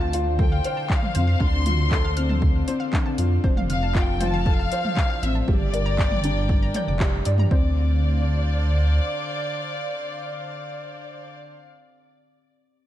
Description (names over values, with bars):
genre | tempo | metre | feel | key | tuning
piano and strings electronica | 118 BPM | 4/4 | straight | D minor | A4 = 441 Hz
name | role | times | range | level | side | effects
rich chamber violin section | melody | 0.0-11.4 s | D5 to C6 | -30 LUFS | left 2 dB | tape echo
warm chamber string section | sustained chords | 0.0-11.6 s | D3 to G5 | -34 LUFS | left 1 dB | none
analog pluck | arpeggios | 0.0-7.8 s | C5 to G6 | -38 LUFS | right 2 dB | chorus, sidechain pumping, tape echo
felt-muted upright piano | riff | 0.0-12.9 s | C4 to D5 | -29 LUFS | left 2 dB | tape echo
dark detuned saw bass | bass | 0.0-9.0 s | F1 to G2 | -22 LUFS | equal | tube saturation, sidechain pumping
deep house drum kit | drums | 0.1-7.5 s | handclaps, hi-hat, toms | -30 LUFS | equal | none
electronic kick drum | drums | 0.4-7.6 s | none | -22 LUFS | equal | none
room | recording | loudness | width
little or no reverb | dark, warm production | -20 LUFS | side -12 dB against mid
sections
0.0-7.5 A section; 7.5-11.6 B section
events
drop 0.0-7.5; band accent 7.0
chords
0.0 Dm7; 3.4 F6; 5.5 Gm; 7.5 Dm7